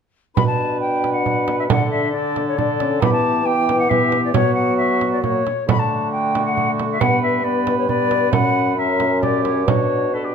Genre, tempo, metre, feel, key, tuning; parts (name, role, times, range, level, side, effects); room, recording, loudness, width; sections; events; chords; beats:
classical, renaissance-style consort dance; 135 BPM; 3/4; straight; B minor; A4 = 440 Hz
silver concert flute; melody; 0.3-10.3 s; B4 to B5; -21 LUFS; left 4 dB
dark cor anglais; second line; 0.4-10.3 s; F#4 to B4; -25 LUFS; right 8 dB
warm trombone; accompaniment; 0.4-10.3 s; A3 to D4; -24 LUFS; left 4 dB
mellow bassoon; bass; 0.4-10.3 s; F#2 to F#3; -23 LUFS; equal
frame drum; percussion; 0.4-9.9 s; -22 LUFS; right 7 dB
moderate recital hall reverb, RT60 1.7 s; close, detailed microphones; -16 LUFS; side -6 dB against mid
0.4-10.3 A section
0.4 Bm; 1.7 D5; 3.0 Em; 4.3 F#sus4; 5.2 F#; 5.7 D; 7.0 G; 8.3 F#sus4; 9.7 Bm
| 0.35 0.80 1.25 | 1.69 2.13 2.58 | 3.02 3.46 3.90 | 4.34 4.79 5.23 | 5.68 6.12 6.57 | 7.01 7.45 7.89 | 8.33 8.78 9.22 | 9.67 10.13